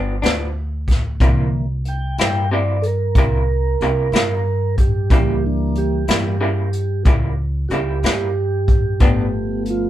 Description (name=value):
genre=slow blues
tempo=62 BPM (dotted quarters)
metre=12/8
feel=straight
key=unclear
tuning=A4 = 442 Hz
part: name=electric guitar through a small old amp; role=accompaniment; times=0.0-9.2 s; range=G2 to E4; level=-22 LUFS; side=left 1 dB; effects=tremolo
part: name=upright bass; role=bass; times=0.0-9.9 s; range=G1 to G2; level=-21 LUFS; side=equal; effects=none
part: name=vintage brush drum kit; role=drums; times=0.2-9.8 s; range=hi-hat, kick drum, snare drum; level=-17 LUFS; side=equal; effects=none
part: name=mellow tonewheel organ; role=sustained chords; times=1.2-9.9 s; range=D3 to G5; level=-22 LUFS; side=right 3 dB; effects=slow rotary speaker
room=light reverb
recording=band playing live in one room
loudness=-16 LUFS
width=side -12 dB against mid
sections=0.0-9.9 A section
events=tonewheel organ solo 0.0-9.9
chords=0.0 G7; 1.2 C7; 5.1 C#dim7; 9.0 G7